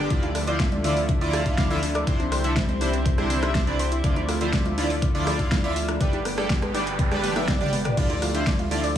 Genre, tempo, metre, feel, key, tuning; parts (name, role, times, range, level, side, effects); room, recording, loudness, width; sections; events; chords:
progressive house; 122 BPM; 4/4; straight; D dorian; A4 = 440 Hz
lush unison pad; sustained chords; 0.0-9.0 s; D3 to G4; -30 LUFS; equal; chorus, sidechain pumping
soft round pluck; arpeggios; 0.0-9.0 s; B3 to D6; -29 LUFS; left 1 dB; ensemble chorus, cassette tape, sidechain pumping, digital delay
chorused polysynth; stabs; 0.0-8.8 s; C3 to F5; -28 LUFS; right 1 dB; sidechain pumping, digital delay
saturated sub bass; bass; 0.0-9.0 s; G1 to D2; -30 LUFS; equal; sidechain pumping
electronic kick drum; drums; 0.1-9.0 s; -24 LUFS; equal; overdrive
pop drum kit; drums; 0.1-8.9 s; crash cymbal, hi-hat, ride cymbal, rim click, snare drum, toms; -30 LUFS; equal; overdrive
electronic congas and rim click; percussion; 0.2-8.8 s; -33 LUFS; right 1 dB; sidechain pumping on perc, sidechain pumping on snare
noise sweep; sound effects; 6.6-8.0 s; -36 LUFS; right 3 dB
light reverb; studio ambience; -21 LUFS; side -10 dB against mid
0.0-9.0 A section
noise sweep 6.6-8.0; drum fill 7.2-8.0
0.1 Dmadd9; 2.1 Cadd9; 4.0 Dmadd9; 6.0 G; 8.0 Dmadd9